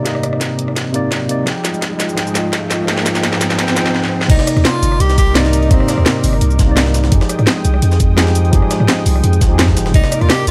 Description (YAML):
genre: liquid drum and bass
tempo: 170 BPM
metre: 4/4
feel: straight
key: C minor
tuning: A4 = 439 Hz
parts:
  - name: tine electric piano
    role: accompaniment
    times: 0.0-10.5 s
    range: C3 to G5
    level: -21 LUFS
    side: equal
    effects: overdrive, delay
  - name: warm analog pad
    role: sustained chords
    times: 0.0-10.5 s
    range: Ab3 to Eb6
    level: -27 LUFS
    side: equal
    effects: subtle chorus, sidechain pumping
  - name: riser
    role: sound effects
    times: 0.8-3.9 s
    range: none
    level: -28 LUFS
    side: equal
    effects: none
  - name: drum and bass drum kit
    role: drums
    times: 0.1-10.5 s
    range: cabasa, crash cymbal, hi-hat, rim click, snare drum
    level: -21 LUFS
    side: equal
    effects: high-pass filter on hats, high-pass filter on snare, high-pass filter on perc, high-pass filter on cymbals, high-pass filter on room
  - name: electronic kick drum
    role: drums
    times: 0.1-10.0 s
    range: none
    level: -16 LUFS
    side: equal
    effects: high-pass filter on kick, high-pass filter on room
  - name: warm tenor saxophone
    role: melody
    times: 4.3-6.4, 9.9-10.5 s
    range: C4 to G4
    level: -22 LUFS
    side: equal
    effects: delay
  - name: long sustained 808-style bass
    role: bass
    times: 4.3-10.5 s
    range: F1 to Ab2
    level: -16 LUFS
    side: equal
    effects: none
  - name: jungle sampler-style drum kit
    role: drums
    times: 4.3-10.5 s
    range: hi-hat, snare drum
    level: -26 LUFS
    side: equal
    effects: overdrive, high-pass filter on hats, high-pass filter on snare
room: digital ambience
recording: none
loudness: -14 LUFS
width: mono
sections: 0.0-4.3 A section; 4.3-10.5 B section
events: build-up 0.0-4.3; drum fill 0.0-3.9, 3.9-4.3; riser 0.8-3.9; drop 4.3-10.5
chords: 0.0 Cm9; 1.5 Fm9; 4.3 Cm9; 7.1 Fm9; 9.9 Cm9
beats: | 0.06 0.41 0.77 1.12 | 1.47 1.83 2.18 2.53 | 2.88 3.24 3.59 3.94 | 4.30 4.65 5.00 5.36 | 5.71 6.06 6.41 6.77 | 7.12 7.47 7.83 8.18 | 8.53 8.88 9.24 9.59 | 9.94 10.30